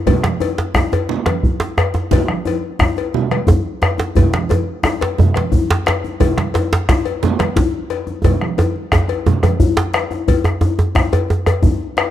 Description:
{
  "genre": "west african traditional, West African drum ensemble",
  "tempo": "118 BPM (dotted quarters)",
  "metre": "12/8",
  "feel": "straight",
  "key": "none",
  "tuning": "none",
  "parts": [
    { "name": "bombo", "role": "percussion", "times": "0.1-12.1 s", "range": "none", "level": "-18 LUFS", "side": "equal", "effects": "none" },
    { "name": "congas", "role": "percussion", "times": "0.1-10.1 s", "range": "none", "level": "-22 LUFS", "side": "right 6 dB", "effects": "none" },
    { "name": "cowbell", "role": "percussion", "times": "0.1-12.1 s", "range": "none", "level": "-24 LUFS", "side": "left 11 dB", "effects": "none" },
    { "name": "djembe", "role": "percussion", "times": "0.1-12.1 s", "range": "none", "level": "-21 LUFS", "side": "left 4 dB", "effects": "none" },
    { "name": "djembe", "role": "percussion", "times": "0.2-11.6 s", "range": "none", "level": "-16 LUFS", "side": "right 1 dB", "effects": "none" }
  ],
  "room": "studio reverb",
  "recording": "dry, close 1970s-style studio recording",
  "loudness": "-14 LUFS",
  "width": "side -12 dB against mid",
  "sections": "0.0-10.3 A section; 10.3-12.1 B section",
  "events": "drum fill 1.4-2.1, 8.2-10.3",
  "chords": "none",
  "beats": "| 0.07 0.58 1.10 1.61 | 2.12 2.63 3.14 3.65 | 4.16 4.67 5.18 5.69 | 6.20 6.71 7.22 7.73 | 8.24 8.75 9.26 9.77 | 10.28 10.79 11.30 11.81"
}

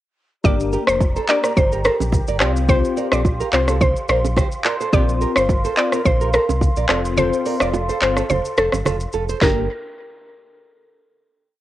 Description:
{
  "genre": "afrobeats",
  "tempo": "107 BPM",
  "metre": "4/4",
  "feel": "swing 55% on 16ths",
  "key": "G minor",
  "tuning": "A4 = 440 Hz",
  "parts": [
    { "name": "mallet-like synth pluck", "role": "melody", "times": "0.4-9.7 s", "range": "A4 to D5", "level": "-21 LUFS", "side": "equal", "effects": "chorus" },
    { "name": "bell-like tine electric piano", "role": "accompaniment", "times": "0.4-9.6 s", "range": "Bb3 to C5", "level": "-24 LUFS", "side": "left 7 dB", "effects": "ensemble chorus" },
    { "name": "mellow large flute ensemble", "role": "sustained chords", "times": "0.4-9.7 s", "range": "D4 to C6", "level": "-29 LUFS", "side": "right 1 dB", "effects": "none" },
    { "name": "nylon-string guitar", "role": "riff", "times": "0.4-9.7 s", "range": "C4 to D5", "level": "-26 LUFS", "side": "right 7 dB", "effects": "none" },
    { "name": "sub bass with octave", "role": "bass", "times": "0.4-9.7 s", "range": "F1 to C2", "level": "-23 LUFS", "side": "equal", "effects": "none" },
    { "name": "afro-pop drum kit", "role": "drums", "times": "0.4-9.6 s", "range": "handclaps, hi-hat, kick drum, rim click, shaker, snare drum", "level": "-20 LUFS", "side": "equal", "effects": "vintage 12-bit sampler grit, cassette tape" },
    { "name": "congas and bongos", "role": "percussion", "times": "0.4-9.7 s", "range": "none", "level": "-25 LUFS", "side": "right 5 dB", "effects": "none" }
  ],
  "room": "light reverb",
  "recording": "home recording on cassette",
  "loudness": "-16 LUFS",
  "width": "side -14 dB against mid",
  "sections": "0.4-9.4 chorus; 9.4-11.6 final chord",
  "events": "kick muted 7.2-9.4",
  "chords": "0.4 Gm; 2.4 Csus4; 4.9 Bbsus2; 6.9 F; 9.4 Gm",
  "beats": "| 0.44 1.00 1.56 2.12 | 2.69 3.25 3.81 4.37 | 4.93 5.49 6.05 6.61 | 7.17 7.73 8.29 8.85 | 9.41"
}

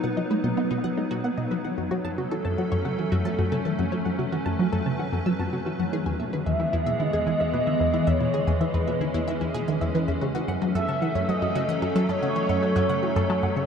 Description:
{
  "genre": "ambient, sequencer-driven space music",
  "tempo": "112 BPM",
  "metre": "4/4",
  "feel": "straight",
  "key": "F# dorian",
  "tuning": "A4 = 441 Hz",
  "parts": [
    { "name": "evolving wavetable pad", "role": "sustained chords", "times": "0.0-13.7 s", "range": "E3 to B4", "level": "-28 LUFS", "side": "equal", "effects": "ensemble chorus, built-in reverb, shimmer reverb" },
    { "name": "wide unison pluck", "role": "arpeggios", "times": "0.0-13.7 s", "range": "D#4 to E6", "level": "-34 LUFS", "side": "equal", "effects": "auto-pan, shimmer reverb, ping-pong delay" },
    { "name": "resonant blip pluck", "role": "riff", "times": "0.0-13.6 s", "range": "E2 to B3", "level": "-26 LUFS", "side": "equal", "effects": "chorus, phaser, ping-pong delay" },
    { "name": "expressive portamento lead", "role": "melody", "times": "6.5-13.7 s", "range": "B4 to E5", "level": "-28 LUFS", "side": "right 1 dB", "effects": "ensemble chorus, shimmer reverb, ping-pong delay" }
  ],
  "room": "wet huge ambient reverb, RT60 8.2 s",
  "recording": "dark, warm production",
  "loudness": "-23 LUFS",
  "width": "side -7 dB against mid",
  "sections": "0.0-13.7 A section",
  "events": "filter sweep on synth arpeggio sound 0.0-13.7",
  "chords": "0.0 B; 1.6 F#m; 5.9 E; 10.2 F#m",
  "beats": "0.04 0.57 1.11 | 1.64 2.18 2.71 3.25 | 3.79 4.32 4.86 5.39 | 5.93 6.46 7.00 7.54 | 8.07 8.61 9.14 9.68 | 10.21 10.75 11.29 11.82 | 12.36 12.89 13.43"
}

